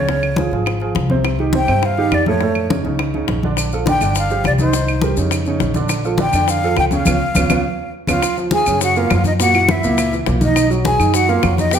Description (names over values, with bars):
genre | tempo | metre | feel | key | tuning
Afro-Cuban jazz | 206 BPM | 4/4 | straight | F# major from 8.2 s | A4 = 442 Hz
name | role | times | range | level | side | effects
breathy jazz flute | melody | 0.0-11.8 s | C5 to G#5 | -19 LUFS | left 2 dB | none
warm upright piano | accompaniment | 0.0-11.8 s | A2 to Eb5 | -20 LUFS | right 3 dB | none
upright bass | bass | 0.0-11.8 s | G1 to G2 | -20 LUFS | equal | none
bongos | percussion | 0.1-11.8 s | none | -26 LUFS | left 7 dB | none
congas | percussion | 0.1-11.8 s | none | -23 LUFS | left 2 dB | none
claves | percussion | 0.2-11.6 s | none | -27 LUFS | right 4 dB | none
maracas | percussion | 3.6-11.8 s | none | -28 LUFS | left 7 dB | none
breathy bright wooden-headed alto flute | second line | 8.1-11.8 s | D#4 to G#4 | -23 LUFS | right 8 dB | none
room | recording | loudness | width
moderate large studio reverb, RT60 1.4 s | none | -14 LUFS | side -8 dB against mid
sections
0.0-8.2 A section; 8.2-11.8 B section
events
band accent 7.1-8.2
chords
0.1 Db; 1.2 Cmadd11; 2.4 Faug7; 3.6 Bbmaj7; 4.2 G5; 4.7 Cm7; 5.3 Bbmadd11; 5.9 Bbmaj7; 7.1 Db7; 8.2 F#maj9; 9.4 F#7; 10.6 Bmaj7